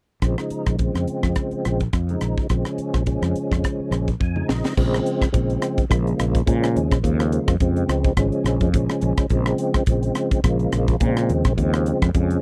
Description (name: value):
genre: electric jazz fusion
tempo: 106 BPM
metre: 4/4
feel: swing 56% on 16ths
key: Bb minor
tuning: A4 = 440 Hz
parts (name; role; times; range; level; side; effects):
- tonewheel organ; accompaniment; 0.2-12.4 s; Db3 to Ab5; -26 LUFS; equal; slow rotary speaker, overdrive, chorus vibrato
- fretless electric bass; bass; 0.2-12.4 s; Ab1 to Bb2; -24 LUFS; equal; none
- crisp fusion drum kit; drums; 0.2-12.4 s; crash cymbal, hi-hat, kick drum, rim click, snare drum, toms; -25 LUFS; equal; none
room: little or no reverb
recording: dry, close 1970s-style studio recording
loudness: -21 LUFS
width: mono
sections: 0.2-4.8 A section; 4.8-12.4 B section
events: tonewheel organ fill 3.9-4.8; drum fill 4.2-4.8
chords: 0.2 Bbm9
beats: | 0.23 0.80 1.36 1.93 | 2.50 3.07 3.64 4.21 | 4.77 5.34 5.91 6.47 | 7.04 7.61 8.17 8.74 | 9.31 9.87 10.44 11.01 | 11.58 12.14